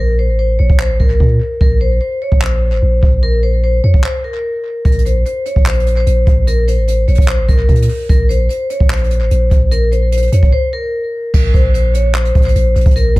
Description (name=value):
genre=hip hop, trap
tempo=148 BPM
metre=4/4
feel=half-time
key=Bb harmonic minor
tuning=A4 = 440 Hz
part: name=vibraphone with hard mallets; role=melody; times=0.0-13.2 s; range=Bb4 to Db5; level=-18 LUFS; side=left 1 dB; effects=low-pass filter, tape echo
part: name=long sustained 808-style bass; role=bass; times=0.0-13.2 s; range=A1 to Bb2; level=-13 LUFS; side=equal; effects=none
part: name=jazz brush drum kit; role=drums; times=0.7-13.2 s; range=crash cymbal, handclaps, hi-hat, kick drum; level=-14 LUFS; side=equal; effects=none
room=studio ambience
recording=echo-heavy mix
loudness=-11 LUFS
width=side -20 dB against mid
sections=0.0-11.3 A section; 11.3-13.2 B section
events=break 0.0-4.9, 10.5-11.3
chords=0.0 Bbsus2